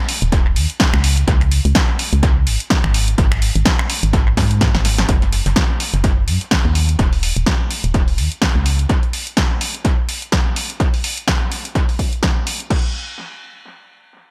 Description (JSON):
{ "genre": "piano house", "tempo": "126 BPM", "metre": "4/4", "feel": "swing 57% on 16ths", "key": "unclear", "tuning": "A4 = 440 Hz", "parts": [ { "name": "punchy analog drum machine", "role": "drums", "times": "0.1-12.8 s", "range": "crash cymbal, finger snaps, hi-hat, snare drum", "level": "-23 LUFS", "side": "equal", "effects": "analog delay" }, { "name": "organ-like FM bass", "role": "bass", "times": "0.2-8.9 s", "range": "Eb1 to Ab2", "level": "-19 LUFS", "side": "equal", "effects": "sidechain pumping" }, { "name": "electronic kick drum", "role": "drums", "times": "0.3-12.8 s", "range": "none", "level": "-19 LUFS", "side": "equal", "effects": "none" } ], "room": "little or no reverb", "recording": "echo-heavy mix", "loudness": "-17 LUFS", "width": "mono", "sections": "0.0-5.1 A section; 5.1-12.7 B section; 12.7-14.3 C section", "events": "drop 0.0-5.1; drum fill 4.4-5.1", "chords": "none" }